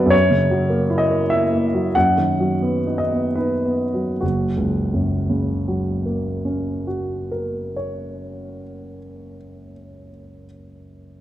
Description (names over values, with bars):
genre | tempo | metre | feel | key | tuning
classical, romantic character piece for solo piano | 67-108 BPM | 3/4 | rubato | F# major | A4 = 442 Hz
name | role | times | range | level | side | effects
warm grand piano | solo | 0.0-11.2 s | F#1 to F#5 | -19 LUFS | equal | none
room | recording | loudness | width
moderate recital hall reverb, RT60 1.4 s | dark, warm production | -18 LUFS | side -13 dB against mid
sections
0.0-4.2 A section; 4.2-9.0 B section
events
slowing down 0.0-4.2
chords
0.1 F#7; 1.9 B/F#; 4.2 F#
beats
| 0.12 0.70 1.31 | 1.95 2.63 3.37 | 4.22 5.03 5.81 | 6.59 7.40 8.20